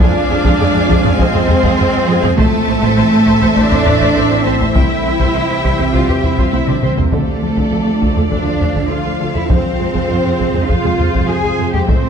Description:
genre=cinematic, hybrid orchestral and electronic film score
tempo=101 BPM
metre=4/4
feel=straight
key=unclear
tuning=A4 = 441 Hz
part: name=rich symphonic violin section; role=melody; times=0.0-12.1 s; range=E5 to A5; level=-28 LUFS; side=left 3 dB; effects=none
part: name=warm symphonic violin section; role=second line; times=0.0-12.1 s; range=A4 to Ab5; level=-23 LUFS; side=left 2 dB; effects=none
part: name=rich symphonic viola section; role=accompaniment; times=0.0-12.1 s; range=Ab4 to F5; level=-22 LUFS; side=equal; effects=none
part: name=mellow French horn section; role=sustained chords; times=0.0-12.1 s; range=Ab3 to A4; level=-28 LUFS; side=left 6 dB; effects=none
part: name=mellow trombone section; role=sustained chords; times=0.0-12.1 s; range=F2 to A3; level=-25 LUFS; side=right 2 dB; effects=none
part: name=warbly tape-like pad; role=sustained chords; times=0.0-12.1 s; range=E3 to C5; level=-22 LUFS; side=right 2 dB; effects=chorus, built-in reverb, phaser
part: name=tight sequenced synth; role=arpeggios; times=0.0-12.0 s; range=C3 to A4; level=-24 LUFS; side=left 1 dB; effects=none
part: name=rich symphonic cello section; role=bass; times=0.0-12.1 s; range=A3 to Ab4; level=-17 LUFS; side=right 2 dB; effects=none
part: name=rich symphonic double bass section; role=bass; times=0.0-11.9 s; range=A1 to F2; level=-20 LUFS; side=right 3 dB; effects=none
part: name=taiko ensemble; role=drums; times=0.0-12.1 s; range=none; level=-18 LUFS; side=equal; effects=none
room=wet scoring stage reverb, RT60 1.9 s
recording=dark, warm production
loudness=-11 LUFS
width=side -7 dB against mid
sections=0.0-12.1 A section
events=drum fill 6.5-7.1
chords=0.0 Fm; 2.4 Am; 4.7 C; 7.1 Dm; 9.5 Fm

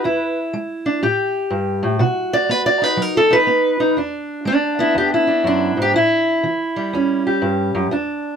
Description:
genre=acoustic country blues, solo or duo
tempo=122 BPM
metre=4/4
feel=swing 64% on 8ths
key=unclear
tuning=A4 = 441 Hz
part: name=fingerpicked steel-string acoustic guitar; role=solo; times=0.0-8.4 s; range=E2 to D5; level=-16 LUFS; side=equal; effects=none
room=light reverb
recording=close, detailed microphones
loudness=-16 LUFS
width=side -7 dB against mid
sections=0.0-4.0 A section; 4.0-8.4 B section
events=steel-string acoustic guitar solo 0.0-4.0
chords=0.0 E7; 1.0 Gsus2; 2.0 B; 4.0 E7; 5.9 A7

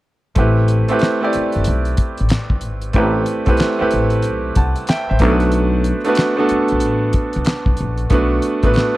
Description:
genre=R&B, neo-soul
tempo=93 BPM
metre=4/4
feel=swing 63% on 16ths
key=A dorian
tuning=A4 = 440 Hz
part: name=bright baby grand piano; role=accompaniment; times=0.4-9.0 s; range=A3 to A5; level=-18 LUFS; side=right 2 dB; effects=none
part: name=upright bass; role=bass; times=0.4-8.7 s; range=G1 to C2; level=-18 LUFS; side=left 1 dB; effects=none
part: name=cloth-damped thuddy drum kit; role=drums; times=0.4-9.0 s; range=handclaps, hi-hat, kick drum, snare drum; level=-18 LUFS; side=equal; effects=none
room=studio reverb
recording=dry, close 1970s-style studio recording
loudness=-14 LUFS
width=side -17 dB against mid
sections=0.4-9.0 A section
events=none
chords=0.4 Am9; 5.2 Bm7

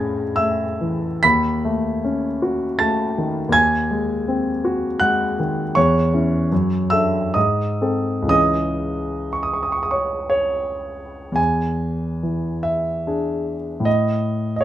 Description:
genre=classical, romantic nocturne for solo piano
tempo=52-83 BPM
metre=3/4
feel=rubato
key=unclear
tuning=A4 = 440 Hz
part: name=warm concert grand piano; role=solo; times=0.0-14.6 s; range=C#2 to B6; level=-18 LUFS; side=equal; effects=none
room=light reverb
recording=close, detailed microphones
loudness=-18 LUFS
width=side -12 dB against mid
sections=0.0-11.4 A section; 11.4-14.6 B section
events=none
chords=0.0 Amaj7; 1.2 D#m7b5; 3.5 G#7/D#; 5.8 C#m/E; 6.5 D/F#; 7.4 G#; 8.3 C#m; 11.4 E7; 13.9 N.C.

